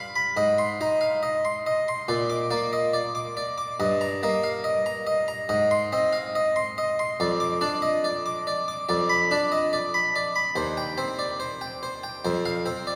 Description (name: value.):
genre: classical, baroque-style suite movement for harpsichord.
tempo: 70 BPM.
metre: 4/4.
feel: rubato.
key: unclear.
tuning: A4 = 440 Hz.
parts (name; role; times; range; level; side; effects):
harpsichord; solo; 0.0-13.0 s; Eb2 to D6; -25 LUFS; equal; none.
room: wet cathedral reverb, RT60 6.4 s.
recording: recorded in a church or concert hall.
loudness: -25 LUFS.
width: mono.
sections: 0.0-13.0 A section.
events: none.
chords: 0.4 Ab; 2.1 Bb; 3.8 Eb/G; 5.5 Ab; 7.2 Dm/F; 8.9 Bdim/F; 10.6 Cm/Eb; 12.2 F5.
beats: 0.36 1.21 | 2.07 2.94 3.79 4.64 | 5.50 6.35 7.20 8.04 | 8.90 9.74 10.57 11.41 | 12.25.